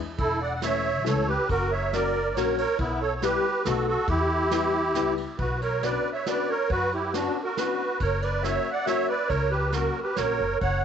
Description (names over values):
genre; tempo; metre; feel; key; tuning
musette waltz; 138 BPM; 3/4; straight; E dorian, B harmonic minor from 5.4 s; A4 = 439 Hz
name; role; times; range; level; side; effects
upright bass; bass; 0.0-10.8 s; E1 to F#2; -30 LUFS; left 1 dB; none
musette accordion; melody; 0.2-10.8 s; B3 to F#5; -25 LUFS; right 3 dB; none
vintage brush drum kit; drums; 0.2-10.7 s; kick drum, ride cymbal, snare drum; -36 LUFS; right 2 dB; none
warm upright piano; accompaniment; 0.6-10.4 s; E3 to G4; -32 LUFS; left 14 dB; none
room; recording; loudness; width
wet spring reverb, RT60 1.9 s, small room ambience; 1960s-style stereo, nothing above 8.0 kHz; -23 LUFS; side -8 dB against mid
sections
0.0-5.4 A section; 5.4-10.8 B section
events
none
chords
0.2 A/E; 1.5 F#; 2.8 Em/B; 3.6 B7; 4.1 Em; 5.4 Bmadd9; 8.0 F#